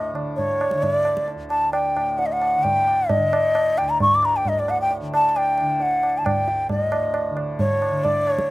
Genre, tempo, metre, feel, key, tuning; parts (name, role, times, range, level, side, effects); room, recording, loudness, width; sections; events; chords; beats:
indian classical, Hindustani; 133 BPM; 4/4; straight; D major; A4 = 440 Hz
bansuri; melody; 0.0-8.5 s; C#5 to D6; -19 LUFS; left 1 dB
tanpura; drone; 0.0-8.5 s; D2 to D3; -31 LUFS; equal
tabla; percussion; 0.2-8.5 s; -26 LUFS; right 2 dB
little or no reverb; recorded outdoors, with no room sound; -18 LUFS; side -18 dB against mid
0.0-6.7 A section; 6.7-8.5 B section
0.37 0.83 | 1.28 1.74 2.19 2.65 | 3.10 3.55 4.00 4.45 | 4.90 5.35 5.80 6.25 | 6.70 7.15 7.59 8.04 | 8.49